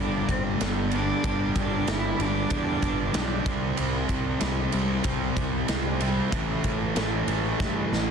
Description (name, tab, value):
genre	quiet-loud alternative rock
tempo	94 BPM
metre	4/4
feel	straight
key	unclear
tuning	A4 = 440 Hz
part	rich cello	melody	0.0-3.5 s	A3 to E4	-30 LUFS	right 3 dB	none
part	cranked stack guitar	riff	0.0-8.1 s	G2 to C4	-30 LUFS	right 12 dB	overdrive
part	distorted electric guitar	riff	0.0-8.1 s	G2 to C4	-31 LUFS	left 12 dB	distortion
part	fuzz picked electric bass	bass	0.0-8.1 s	G1 to G2	-30 LUFS	equal	overdrive
part	big rock drum kit	drums	0.3-8.1 s	kick drum, ride cymbal, snare drum	-29 LUFS	equal	vintage 12-bit sampler grit
room	light reverb, studio reverb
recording	dense, heavily limited modern master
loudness	-24 LUFS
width	side -6 dB against mid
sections	0.0-8.1 A section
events	drum fill 7.6-8.1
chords	0.0 G5; 3.5 C5; 6.3 A5